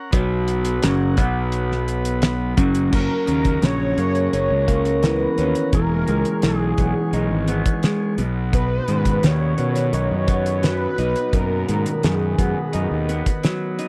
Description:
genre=psychedelic rock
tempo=86 BPM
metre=4/4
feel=straight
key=unclear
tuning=A4 = 439 Hz
part: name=combo organ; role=sustained chords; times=0.0-13.9 s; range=B3 to A#5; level=-36 LUFS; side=equal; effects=none
part: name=electric guitar through a small old amp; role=riff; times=0.1-13.9 s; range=F#2 to D#4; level=-25 LUFS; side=equal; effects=phaser
part: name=fuzz fingered electric bass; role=bass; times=0.1-13.2 s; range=E1 to B2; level=-25 LUFS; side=equal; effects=overdrive
part: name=cloth-damped thuddy drum kit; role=drums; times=0.1-13.9 s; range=crash cymbal, hi-hat, kick drum, snare drum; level=-23 LUFS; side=equal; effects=none
part: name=unison lead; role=melody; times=3.0-13.4 s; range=G#4 to C#5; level=-27 LUFS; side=equal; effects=slapback echo
room=little or no reverb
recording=dry, close 1970s-style studio recording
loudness=-20 LUFS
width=mono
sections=0.0-2.9 A section; 2.9-13.9 B section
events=none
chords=0.1 B5; 0.8 F#; 1.2 B5; 2.6 F#; 2.9 F#7; 5.7 Emaj7; 8.2 B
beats=| 0.14 0.83 1.53 2.23 | 2.93 3.63 4.33 5.03 | 5.73 6.43 7.13 7.83 | 8.53 9.23 9.93 10.63 | 11.34 12.04 12.74 13.44

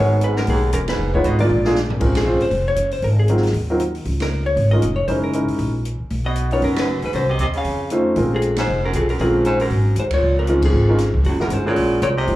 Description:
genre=jazz, small-group swing and bop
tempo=234 BPM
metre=4/4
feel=swing 58% on 8ths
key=Bb minor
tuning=A4 = 442 Hz
part: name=vintage hollow-body jazz guitar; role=melody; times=0.0-12.4 s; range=Gb4 to F5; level=-23 LUFS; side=left 1 dB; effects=slapback echo
part: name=warm baritone saxophone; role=second line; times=0.0-1.9, 6.3-12.4 s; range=Db2 to Db3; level=-23 LUFS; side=right 2 dB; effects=slapback echo
part: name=warm concert grand piano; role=accompaniment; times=0.0-12.4 s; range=Gb3 to C5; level=-21 LUFS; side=equal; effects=slapback echo
part: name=upright bass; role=bass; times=0.0-12.4 s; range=Fb1 to Ab2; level=-20 LUFS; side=equal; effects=none
part: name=open jazz drum kit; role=drums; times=0.2-12.3 s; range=crash cymbal, hi-hat, kick drum, ride cymbal, snare drum, toms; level=-27 LUFS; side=equal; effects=none
room=studio reverb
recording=live gig heard through the venue's PA, club reverb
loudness=-16 LUFS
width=side -16 dB against mid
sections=0.0-2.0 A section; 2.0-10.2 B section; 10.2-12.4 C section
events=band accent 0.9, 2.1, 4.2, 6.8, 8.6, 10.1, 10.6; drum fill 1.5-2.0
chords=0.0 Abm7; 1.0 Fm7b5; 1.5 Bb7; 2.0 Bbm9; 3.0 Ab13; 4.1 Db69; 5.1 Gb13; 6.1 Bmaj9; 7.1 Cdim; 7.7 F7b13; 8.2 Bbm9; 9.7 Absus2; 10.2 Db69; 11.2 Gb9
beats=0.22 0.48 0.73 | 0.99 1.24 1.50 1.76 | 2.01 2.27 2.52 2.78 | 3.04 3.29 3.55 3.81 | 4.06 4.32 4.57 4.83 | 5.09 5.34 5.60 5.86 | 6.11 6.37 6.62 6.88 | 7.14 7.39 7.65 7.91 | 8.16 8.42 8.68 8.94 | 9.19 9.45 9.71 9.96 | 10.22 10.48 10.73 10.99 | 11.25 11.51 11.76 12.02 | 12.28

